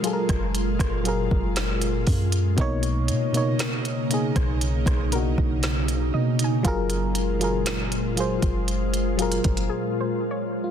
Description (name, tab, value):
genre	contemporary R&B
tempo	59 BPM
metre	4/4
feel	straight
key	unclear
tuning	A4 = 441 Hz
part	FM electric piano with auto-pan	accompaniment	0.0-10.7 s	B2 to D#5	-27 LUFS	left 2 dB	none
part	ethereal airy pad	sustained chords	0.0-10.7 s	A#2 to E#4	-28 LUFS	right 1 dB	ensemble chorus, built-in reverb
part	smooth R&B drum kit	drums	0.0-9.7 s	hi-hat, kick drum, rim click, snare drum	-26 LUFS	equal	soft clipping on snare
part	soft 808-style bass	bass	0.3-9.7 s	F#1 to B2	-26 LUFS	equal	none
part	soft round pluck	texture	3.6-10.7 s	G#4 to G#5	-37 LUFS	left 1 dB	chorus, digital delay
room	digital ambience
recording	dense, heavily limited modern master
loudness	-21 LUFS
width	side -8 dB against mid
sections	0.0-10.7 A section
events	break 9.7-10.7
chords	0.0 F#maj9; 2.6 Bmaj9; 6.6 F#maj9